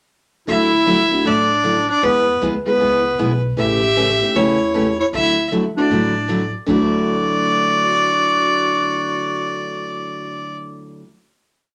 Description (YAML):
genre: country, western swing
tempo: 155 BPM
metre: 4/4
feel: swing 64% on 8ths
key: D major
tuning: A4 = 440 Hz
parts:
  - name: clear fiddle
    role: melody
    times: 0.5-10.6 s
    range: B4 to E5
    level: -21 LUFS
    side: equal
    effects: none
  - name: breathy clarinet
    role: second line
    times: 0.5-10.5 s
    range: B3 to G4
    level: -24 LUFS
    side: equal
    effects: none
  - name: picked steel-string acoustic guitar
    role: accompaniment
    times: 0.5-11.0 s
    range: C#3 to G#4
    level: -24 LUFS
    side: equal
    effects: none
  - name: upright bass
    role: bass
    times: 0.5-11.0 s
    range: A1 to E2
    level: -31 LUFS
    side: equal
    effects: none
  - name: dark upright piano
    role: accompaniment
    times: 1.1-11.0 s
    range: D2 to G#4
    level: -27 LUFS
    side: equal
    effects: none
room: wet studio ambience, RT60 0.5 s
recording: none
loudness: -17 LUFS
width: mono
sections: 0.5-6.7 A section; 6.7-9.8 final chord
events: none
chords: 0.5 Dadd9; 2.0 E; 3.6 A7; 5.1 Dadd9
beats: | 0.48 0.86 1.25 1.64 | 2.03 2.42 2.81 3.19 | 3.58 3.97 4.36 4.75 | 5.13 5.52 5.91 6.29 | 6.68 7.07 7.46 7.84 | 8.23 8.62 9.01 9.39